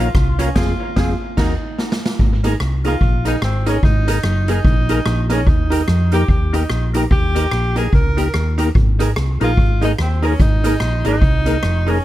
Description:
ska; 146 BPM; 4/4; swing 60% on 8ths; A4 = 441 Hz
warm tenor saxophone; melody; 0.0-12.0 s; C4 to Bb4; -24 LUFS; right 1 dB
archtop guitar, miked and amplified; accompaniment; 0.0-12.0 s; C4 to Bb4; -24 LUFS; right 2 dB; tape echo
percussive tonewheel organ; stabs; 0.0-12.0 s; Ab3 to Bb4; -27 LUFS; left 6 dB; chorus vibrato, fast rotary speaker, tape echo
hollow-body short-scale fingered electric bass; bass; 0.0-12.0 s; F1 to F2; -18 LUFS; equal
street-band drum kit; drums; 0.1-12.0 s; crash cymbal, hi-hat, kick drum, rim click, snare drum; -18 LUFS; equal
little or no reverb; -14 LUFS; side -14 dB against mid
0.0-2.2 A section; 2.2-12.0 B section
band accent 0.6-2.2; drum fill 1.4-2.2
0.0 Bbm; 0.6 Fm; 1.4 Ebm; 2.2 Absus2; 5.5 Eb; 8.8 Absus2
0.14 | 0.55 0.96 1.37 1.78 | 2.19 2.60 3.01 3.42 | 3.83 4.24 4.65 5.06 | 5.47 5.88 6.29 6.70 | 7.11 7.52 7.93 8.34 | 8.75 9.16 9.57 9.98 | 10.40 10.81 11.22 11.63 | 12.04

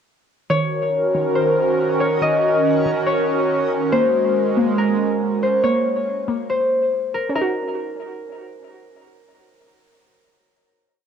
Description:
hip hop, atmospheric cloud-rap; 140 BPM; 4/4; half-time; Eb dorian; A4 = 441 Hz
concert harp; melody; 0.5-9.5 s; Bb4 to Eb5; -20 LUFS; left 2 dB; low-pass filter, plate reverb, tape echo
airy breathy pad; sustained chords; 0.7-5.6 s; Eb3 to Bb4; -20 LUFS; right 2 dB; chorus, cassette tape, plate reverb
warbly dusty pluck; arpeggios; 0.5-11.1 s; Eb3 to Gb4; -25 LUFS; right 1 dB; chorus, phaser, low-pass filter, cassette tape, plate reverb, tape echo
backwards swelling texture; texture; 1.3-3.9 s; Db4 to Eb5; -34 LUFS; right 2 dB; built-in reverb, cassette tape, plate reverb
moderate small room reverb, RT60 0.6 s; home recording on cassette; -17 LUFS; side -7 dB against mid
0.5-7.4 breakdown; 7.4-10.8 final chord
0.5 Ebm7; 3.9 Ab9sus4; 7.4 Ebm7
| 0.50 0.93 1.35 1.78 | 2.21 2.64 3.07 3.50 | 3.93 4.36 4.78 5.21 | 5.64 6.07 6.50 6.93 | 7.36 7.78 8.21 8.64 | 9.07 9.50 9.93 10.36

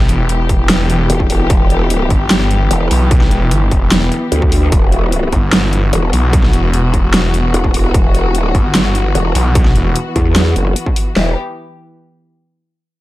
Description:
heavy wobble dubstep; 149 BPM; 4/4; half-time; E minor; A4 = 440 Hz
dark chamber string section; sustained chords; 0.0-11.4 s; E3 to G4; -20 LUFS; left 2 dB; sidechain pumping
snarling distorted saw bass; bass; 0.0-9.9 s; E1 to B1; -14 LUFS; equal; distortion, overdrive
dubstep drum kit; drums; 0.1-11.0 s; hi-hat, snare drum; -17 LUFS; right 1 dB
dubstep drum kit; drums; 0.5-11.3 s; kick drum, snare drum; -14 LUFS; equal; distortion
growl bass; bass; 1.1-11.4 s; E1 to E2; -14 LUFS; equal; chorus, overdrive
little or no reverb; dark, warm production; -11 LUFS; side -17 dB against mid
0.0-11.2 A section; 11.2-12.8 B section
drop 0.0-11.2
0.0 Em
0.29 0.69 1.10 | 1.50 1.90 2.31 2.71 | 3.11 3.51 3.92 4.32 | 4.72 5.12 5.53 5.93 | 6.33 6.74 7.14 7.54 | 7.94 8.35 8.75 9.15 | 9.55 9.96 10.36 10.76 | 11.16

